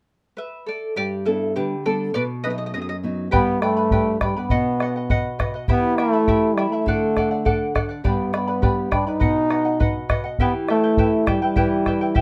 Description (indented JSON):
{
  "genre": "andean folk, Andean ensemble",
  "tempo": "102 BPM",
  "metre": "2/4",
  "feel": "straight",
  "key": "unclear",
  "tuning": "A4 = 439 Hz",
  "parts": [
    { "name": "charango", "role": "accompaniment", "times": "0.4-12.2 s", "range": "E4 to B5", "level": "-27 LUFS", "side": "equal", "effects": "none" },
    { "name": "nylon-string guitar", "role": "accompaniment", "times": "1.0-12.2 s", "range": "F#2 to D#4", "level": "-29 LUFS", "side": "equal", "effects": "none" },
    { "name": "warm trombone", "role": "melody", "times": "3.3-12.2 s", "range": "G3 to D#4", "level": "-24 LUFS", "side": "equal", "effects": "none" },
    { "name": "bombo", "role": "percussion", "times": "3.3-12.2 s", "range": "none", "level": "-24 LUFS", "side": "equal", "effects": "none" }
  ],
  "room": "moderate small room reverb, RT60 0.5 s",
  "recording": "none",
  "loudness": "-21 LUFS",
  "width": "mono",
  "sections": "1.0-3.3 A section; 3.3-12.2 B section",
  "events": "charango solo 1.0-3.3",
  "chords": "0.0 Asus24; 1.0 G; 2.1 B; 3.3 G; 4.5 B; 5.7 Em; 6.9 D; 8.0 G; 9.2 B; 10.4 Em"
}